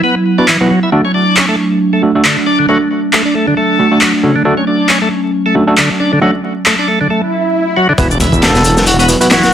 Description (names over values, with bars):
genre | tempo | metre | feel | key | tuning
breakbeat, breaks | 136 BPM | 4/4 | swing 57% on 16ths | unclear | A4 = 440 Hz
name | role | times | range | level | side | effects
warbly tape-like pad | sustained chords | 0.0-9.5 s | F#3 to E4 | -15 LUFS | right 2 dB | chorus, built-in reverb, sidechain pumping
bright tonewheel organ | riff | 0.0-9.4 s | C#3 to E4 | -14 LUFS | left 1 dB | overdrive, slow rotary speaker, digital delay
overdriven tine electric piano | stabs | 0.4-9.3 s | A3 to B4 | -14 LUFS | right 1 dB | low-pass filter, digital delay
electronic handclaps and shaker | drums | 0.5-9.5 s | none | -13 LUFS | left 1 dB | none
swell and impact | sound effects | 7.2-9.5 s | none | -18 LUFS | right 1 dB | none
detuned saw bass | bass | 8.0-9.1 s | E1 | -13 LUFS | equal | none
crunchy breakbeat drum kit | drums | 8.0-9.5 s | hi-hat, kick drum, snare drum | -13 LUFS | equal | none
trumpet with cup mute | melody | 8.4-9.5 s | F#4 to A4 | -14 LUFS | left 1 dB | AM radio sound, digital delay
room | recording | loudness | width
moderate studio reverb, RT60 0.6 s | dense, heavily limited modern master, vinyl crackle | -9 LUFS | side -9 dB against mid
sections
0.0-8.0 A section; 8.0-9.5 B section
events
swell 7.2-8.0; drop 8.0-9.5; impact 8.0-9.5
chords
0.0 Esus2; 0.9 D; 8.0 Esus2